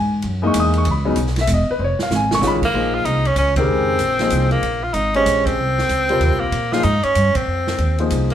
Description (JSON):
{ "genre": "modal jazz", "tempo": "190 BPM", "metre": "3/4", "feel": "swing 64% on 8ths", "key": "Bb dorian", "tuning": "A4 = 440 Hz", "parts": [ { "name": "clear baby grand piano", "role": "accompaniment", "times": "0.0-8.3 s", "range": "C3 to D#6", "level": "-20 LUFS", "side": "left 2 dB", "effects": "none" }, { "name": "upright bass", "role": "bass", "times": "0.0-8.3 s", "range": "E1 to Bb2", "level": "-20 LUFS", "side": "equal", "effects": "none" }, { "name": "open jazz drum kit", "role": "drums", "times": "0.2-8.3 s", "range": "crash cymbal, hi-hat, kick drum, ride cymbal, snare drum", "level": "-28 LUFS", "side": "right 2 dB", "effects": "none" }, { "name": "edgy tenor saxophone", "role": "melody", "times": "2.7-8.3 s", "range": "Bb3 to F4", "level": "-19 LUFS", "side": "right 1 dB", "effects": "none" } ], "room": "wet studio reverb, RT60 0.8 s", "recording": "heard from further back in the room", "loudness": "-16 LUFS", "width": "side -10 dB against mid", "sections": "0.0-2.7 A section; 2.7-8.3 B section", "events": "drum fill 1.8-2.4; band accent 3.5, 5.4, 7.3", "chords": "0.0 C#m69; 0.9 C#m9; 1.8 F7alt; 2.7 Bbm11; 4.6 Abadd9; 6.5 Bb9sus4" }